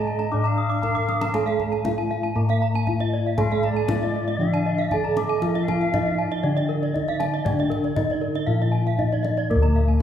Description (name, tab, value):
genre	Balinese gamelan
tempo	118 BPM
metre	4/4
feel	straight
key	D pelog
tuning	A4 = 440 Hz
part	gamelan-type bronze metallophone	melody	0.0-10.0 s	Bb3-40c to D5	-28 LUFS	right 1 dB	none
part	bright reedy bansuri	second line	0.0-7.5 s	D5 to F5-38c	-31 LUFS	left 3 dB	none
part	gamelan-type bronze metallophone	accompaniment	0.0-10.0 s	D3 to D4	-30 LUFS	right 2 dB	none
part	gamelan-type bronze metallophone	arpeggios	0.0-10.0 s	D5 to D6	-29 LUFS	right 5 dB	none
part	gamelan-type bossed gongs	bass	0.0-10.0 s	D2 to Bb4-40c	-25 LUFS	left 1 dB	none
part	gamelan-type bronze metallophone	arpeggios	0.1-9.9 s	Bb4-40c to Eb6	-29 LUFS	left 4 dB	none
part	kendang	percussion	0.2-9.9 s	none	-31 LUFS	left 1 dB	none
room	wet recital hall reverb, RT60 1.7 s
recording	recorded in a church or concert hall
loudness	-20 LUFS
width	side -9 dB against mid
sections	0.0-9.5 A section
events	drum fill 1.0-1.3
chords	none